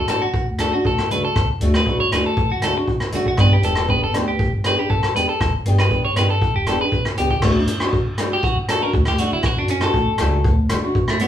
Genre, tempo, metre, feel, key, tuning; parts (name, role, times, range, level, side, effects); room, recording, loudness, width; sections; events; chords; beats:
highlife guitar band; 119 BPM; 4/4; straight; D major; A4 = 440 Hz
electric guitar at the edge of break-up; arpeggios; 0.0-11.3 s; A3 to C#5; -21 LUFS; equal
fingerpicked steel-string acoustic guitar; accompaniment; 0.1-11.3 s; A3 to G4; -24 LUFS; left 1 dB
upright bass; bass; 0.1-11.3 s; E1 to D3; -22 LUFS; equal
crunchy breakbeat drum kit; drums; 0.1-11.3 s; crash cymbal, hi-hat, kick drum, rim click; -21 LUFS; equal
moderate studio reverb, RT60 0.6 s; band playing live in one room, small room ambience; -16 LUFS; side -10 dB against mid
0.0-7.4 A section; 7.4-11.3 B section
clean electric guitar solo 7.4-11.3
0.0 D; 3.4 G; 7.4 D
0.35 0.86 | 1.36 1.87 2.37 2.88 | 3.38 3.89 4.39 4.90 | 5.41 5.91 6.42 6.92 | 7.43 7.93 8.44 8.94 | 9.45 9.95 10.46 10.96